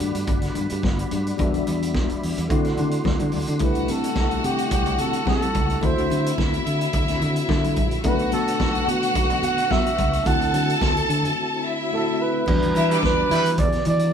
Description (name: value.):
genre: disco.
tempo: 108 BPM.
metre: 4/4.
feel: straight.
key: unclear.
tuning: A4 = 441 Hz.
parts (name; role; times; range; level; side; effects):
tine electric piano; accompaniment; 0.0-14.1 s; F#3 to G4; -28 LUFS; left 4 dB; medium stereo tremolo.
mellow tonewheel organ; sustained chords; 0.0-14.1 s; C3 to C6; -31 LUFS; left 1 dB; chorus vibrato, slow rotary speaker.
fingered electric bass; bass; 0.0-14.1 s; E1 to E3; -25 LUFS; equal; none.
vintage drum kit; drums; 0.0-14.1 s; crash cymbal, hi-hat, kick drum, snare drum; -26 LUFS; right 1 dB; none.
congas; percussion; 0.0-14.0 s; none; -34 LUFS; left 6 dB; none.
breathy flugelhorn; melody; 3.6-14.1 s; F#4 to F#5; -25 LUFS; right 4 dB; none.
clear studio string section; second line; 3.6-13.3 s; D4 to A5; -26 LUFS; left 2 dB; none.
warm horn section; stabs; 12.9-13.5 s; G3 to B4; -24 LUFS; right 2 dB; none.
room: moderate studio reverb, RT60 0.6 s.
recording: band playing live in one room.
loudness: -19 LUFS.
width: side -8 dB against mid.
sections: 0.0-3.6 A section; 3.6-12.5 B section; 12.5-14.1 C section.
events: break 11.4-12.5.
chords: 0.0 Gmaj7; 1.4 Em7; 2.5 D7; 3.6 C6; 5.8 D9; 8.0 Bm7; 10.3 D9; 12.5 Em7.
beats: 0.28 0.83 | 1.39 1.94 2.50 3.05 | 3.61 4.16 4.72 5.27 | 5.83 6.38 6.93 7.49 | 8.04 8.60 9.15 9.71 | 10.26 10.81 11.37 11.92 | 12.47 13.03 13.58.